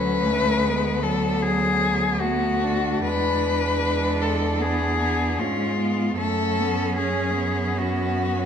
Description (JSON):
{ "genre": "classical, lyrical piece for cello ensemble", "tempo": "68-80 BPM", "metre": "4/4", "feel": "rubato", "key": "unclear", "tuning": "A4 = 440 Hz", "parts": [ { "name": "rich cello", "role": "melody", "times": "0.0-8.5 s", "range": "F4 to B4", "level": "-24 LUFS", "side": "left 5 dB", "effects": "none" }, { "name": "rich cello", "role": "second line", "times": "0.0-8.5 s", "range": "B3 to D4", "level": "-28 LUFS", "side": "right 5 dB", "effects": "none" }, { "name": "rich cello", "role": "accompaniment", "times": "0.0-8.5 s", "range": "F#3 to C#4", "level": "-27 LUFS", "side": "equal", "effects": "none" }, { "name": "warm cello", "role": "bass", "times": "0.0-8.5 s", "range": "D2 to G#2", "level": "-27 LUFS", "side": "right 2 dB", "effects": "none" } ], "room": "wet recital hall reverb, RT60 1.7 s", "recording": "none", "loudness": "-20 LUFS", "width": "side -8 dB against mid", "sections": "0.0-8.5 A section", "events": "none", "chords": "0.0 Bm/D; 3.1 E7b9; 6.2 F#m" }